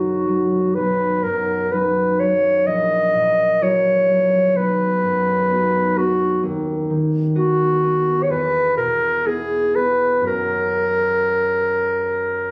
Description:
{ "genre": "classical, romantic duo for clarinet and harp", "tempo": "59-66 BPM", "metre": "4/4", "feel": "rubato", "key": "B major", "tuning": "A4 = 440 Hz", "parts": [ { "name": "clear clarinet", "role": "melody", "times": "0.0-12.5 s", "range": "F#4 to D#5", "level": "-20 LUFS", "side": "equal", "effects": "none" }, { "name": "concert harp", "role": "accompaniment", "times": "0.0-12.5 s", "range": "A#1 to G#4", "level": "-25 LUFS", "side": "equal", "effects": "none" } ], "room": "light reverb", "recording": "recorded on a phone in the room, club reverb", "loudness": "-19 LUFS", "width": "mono", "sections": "0.0-12.5 A section", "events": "none", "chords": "0.0 B; 2.7 F#7/A#; 4.6 B; 6.4 B/D#; 8.3 E; 10.3 F#", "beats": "0.76 1.73 | 2.68 3.62 4.56 5.50 | 6.43 7.36 8.29 9.26 | 10.27 11.27 12.29" }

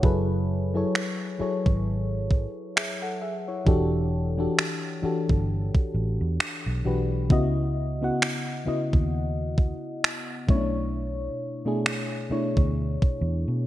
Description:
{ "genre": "contemporary R&B", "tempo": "66 BPM", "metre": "4/4", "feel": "swing 58% on 16ths", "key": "F# minor", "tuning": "A4 = 440 Hz", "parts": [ { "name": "mellow FM electric piano", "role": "accompaniment", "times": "0.0-13.7 s", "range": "B2 to F#5", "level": "-27 LUFS", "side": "left 1 dB", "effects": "chorus" }, { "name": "vintage muted fingered electric bass", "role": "bass", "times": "0.0-13.6 s", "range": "E1 to B2", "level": "-27 LUFS", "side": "equal", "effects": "none" }, { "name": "gated 80s digital drum machine", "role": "drums", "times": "0.0-13.2 s", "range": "finger snaps, kick drum", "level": "-23 LUFS", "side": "right 1 dB", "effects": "vintage 12-bit sampler grit, gated reverb" } ], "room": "light reverb", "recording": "bright 1980s-style digital production", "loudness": "-24 LUFS", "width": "side -14 dB against mid", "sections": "0.0-13.7 A section", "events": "none", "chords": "0.0 F#m11; 3.7 Em11; 7.3 C#m11; 10.5 Bm11", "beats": "| 0.03 0.94 1.85 2.76 | 3.67 4.58 5.49 6.39 | 7.30 8.21 9.12 10.03 | 10.94 11.85 12.76 13.67" }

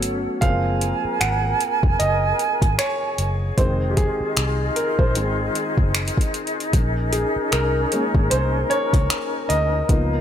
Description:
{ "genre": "contemporary R&B", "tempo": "76 BPM", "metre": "4/4", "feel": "swing 58% on 16ths", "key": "Bb minor", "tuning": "A4 = 440 Hz", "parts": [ { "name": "warm grand piano", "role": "accompaniment", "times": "0.0-10.2 s", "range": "Eb3 to Gb5", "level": "-24 LUFS", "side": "right 1 dB", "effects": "none" }, { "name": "flute section", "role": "sustained chords", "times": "0.0-10.2 s", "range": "Db4 to Ab5", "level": "-24 LUFS", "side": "equal", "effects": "none" }, { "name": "vintage muted fingered electric bass", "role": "bass", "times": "0.0-10.2 s", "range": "F1 to D2", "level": "-24 LUFS", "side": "equal", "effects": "none" }, { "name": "smooth R&B drum kit", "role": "drums", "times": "0.0-10.1 s", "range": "finger snaps, hi-hat, kick drum", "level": "-21 LUFS", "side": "equal", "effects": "none" } ], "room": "little or no reverb", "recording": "dry, gritty hardware recording, transformer saturation", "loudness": "-18 LUFS", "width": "side -9 dB against mid", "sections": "0.0-10.2 A section", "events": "grand piano solo 0.0-10.2", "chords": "0.4 Gbmaj9#11; 3.6 Fm7; 6.7 Bbm9", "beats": "| 0.42 1.21 2.00 2.79 | 3.58 4.37 5.16 5.95 | 6.74 7.52 8.31 9.10 | 9.89" }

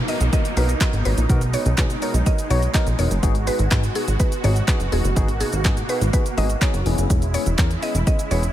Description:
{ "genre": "dance-pop", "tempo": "124 BPM", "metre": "4/4", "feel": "straight", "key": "B major", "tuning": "A4 = 441 Hz", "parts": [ { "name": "filtered supersaw swell", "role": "sustained chords", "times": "0.0-8.5 s", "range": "B2 to F#4", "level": "-29 LUFS", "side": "right 2 dB", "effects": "analog chorus, sidechain pumping" }, { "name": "plucky analog bass", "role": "bass", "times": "0.0-8.5 s", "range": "E1 to B2", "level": "-20 LUFS", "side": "equal", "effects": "sidechain pumping" }, { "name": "downlifter", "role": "sound effects", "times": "0.0-3.2 s", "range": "none", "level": "-34 LUFS", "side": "right 1 dB", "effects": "none" }, { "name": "mallet-like synth pluck", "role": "melody", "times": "0.1-8.4 s", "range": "G#4 to D#5", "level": "-28 LUFS", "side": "right 2 dB", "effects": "chorus, sidechain pumping, analog delay" }, { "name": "tine electric piano", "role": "accompaniment", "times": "0.1-8.4 s", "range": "B3 to C#5", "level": "-29 LUFS", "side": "moving between left 11 dB and left 1 dB", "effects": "auto-pan, sidechain pumping" }, { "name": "punchy analog drum machine", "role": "drums", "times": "0.1-8.5 s", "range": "handclaps, hi-hat, kick drum, shaker", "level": "-22 LUFS", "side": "equal", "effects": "overdrive" }, { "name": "group handclap", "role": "percussion", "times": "0.8-7.7 s", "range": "none", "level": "barely audible", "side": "none", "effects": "none" } ], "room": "light reverb", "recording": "none", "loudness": "-18 LUFS", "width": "side -12 dB against mid", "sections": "0.0-8.5 A section", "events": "none", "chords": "0.0 Bmaj7; 3.2 G#m7; 6.9 E6", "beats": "0.33 0.81 | 1.29 1.78 2.26 2.75 | 3.23 3.71 4.20 4.68 | 5.17 5.65 6.13 6.62 | 7.10 7.58 8.07" }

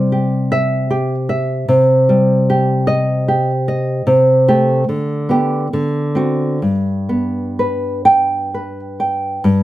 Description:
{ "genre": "romantic piece for solo classical guitar", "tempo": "61-77 BPM", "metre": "3/4", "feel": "rubato", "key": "G major", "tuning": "A4 = 438 Hz", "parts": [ { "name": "nylon-string guitar", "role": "solo", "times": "0.0-9.6 s", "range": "G2 to G5", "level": "-13 LUFS", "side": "equal", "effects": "none" } ], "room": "moderate studio reverb, RT60 0.7 s", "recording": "none", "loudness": "-13 LUFS", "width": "side -15 dB against mid", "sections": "0.0-9.4 A section", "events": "none", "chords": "0.0 C; 1.7 Cm; 4.1 Am7/C; 4.9 G/D; 5.7 D7; 6.6 G", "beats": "0.12 0.90 | 1.69 2.48 3.27 | 4.05 4.85 5.68 | 6.60 7.57 8.52 | 9.42" }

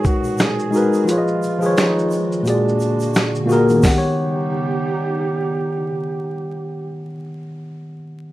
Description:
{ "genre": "lo-fi hip hop", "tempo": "87 BPM", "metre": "4/4", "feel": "swing 58% on 16ths", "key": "unclear", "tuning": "A4 = 440 Hz", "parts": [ { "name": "breathy flugelhorn", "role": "melody", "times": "0.0-7.0 s", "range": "D4 to Ab4", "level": "-26 LUFS", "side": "right 4 dB", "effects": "analog delay, plate reverb" }, { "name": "tine electric piano", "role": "accompaniment", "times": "0.0-8.3 s", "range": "Bb2 to F#5", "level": "-19 LUFS", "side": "left 1 dB", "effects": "overdrive" }, { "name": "hollow soft pad", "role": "sustained chords", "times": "0.0-7.0 s", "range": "Bb2 to Ab4", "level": "-29 LUFS", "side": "right 2 dB", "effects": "ensemble chorus" }, { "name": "dusty soul sampler-style drum kit", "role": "drums", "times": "0.0-4.0 s", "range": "finger snaps, hi-hat, kick drum, shaker, snare drum", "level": "-18 LUFS", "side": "equal", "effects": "none" }, { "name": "egg shaker", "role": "percussion", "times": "0.0-4.2 s", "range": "none", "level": "-39 LUFS", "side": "right 7 dB", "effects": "none" } ], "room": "wet studio reverb, RT60 0.5 s", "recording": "rough home demo mix, vinyl crackle", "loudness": "-16 LUFS", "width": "side -16 dB against mid", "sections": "0.0-3.8 A section; 3.8-6.6 B section", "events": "kick muted 1.1-3.8", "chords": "0.0 Abm9; 1.1 Fm7b5; 2.5 Bb7b13; 3.8 Eb7alt", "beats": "0.39 | 1.07 1.76 2.46 3.14 | 3.83 4.52 5.21 5.90" }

